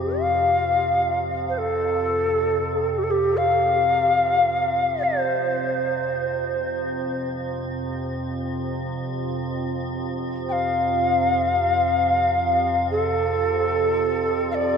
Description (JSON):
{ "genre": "world meditative, free-time meditation music", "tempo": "free time", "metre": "none", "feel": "none", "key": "F major pentatonic", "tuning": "A4 = 440 Hz", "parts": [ { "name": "mellow Native American-style cedar flute", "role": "melody", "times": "0.0-14.8 s", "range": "G4 to G5", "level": "-20 LUFS", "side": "left 1 dB", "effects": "diffuse ambient delay" }, { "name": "icy glass pad", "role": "drone", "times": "0.0-14.8 s", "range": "F2 to C3", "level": "-28 LUFS", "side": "right 1 dB", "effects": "chorus, built-in reverb" } ], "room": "wet huge ambient reverb, RT60 4.9 s", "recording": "dark, warm production", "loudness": "-20 LUFS", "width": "side -6 dB against mid", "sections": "0.0-14.8 A section", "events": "none", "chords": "none" }